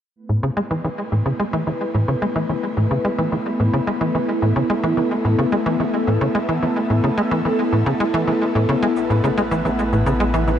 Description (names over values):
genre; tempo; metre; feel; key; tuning
ambient, sequencer-driven space music; 109 BPM; 4/4; straight; unclear; A4 = 440 Hz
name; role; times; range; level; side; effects
phased analog pad; sustained chords; 0.2-10.6 s; A3 to B4; -21 LUFS; equal; phaser, chorus
tight sequencer bass; riff; 0.3-10.5 s; A2 to G#3; -20 LUFS; equal; wide subtle chorus, tape echo
warm sub bass; bass; 9.0-10.6 s; A1; -26 LUFS; equal; none
cabasa and claves; percussion; 9.0-10.6 s; none; -50 LUFS; left 1 dB; tape echo
room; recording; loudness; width
moderate shimmer reverb, RT60 6.7 s; nothing above 10.9 kHz; -17 LUFS; side -9 dB against mid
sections
0.2-9.0 A section; 9.0-10.6 B section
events
filter sweep on analog synth bass 0.2-9.0; filter sweep on analog synth pad 0.2-9.0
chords
0.2 Asus2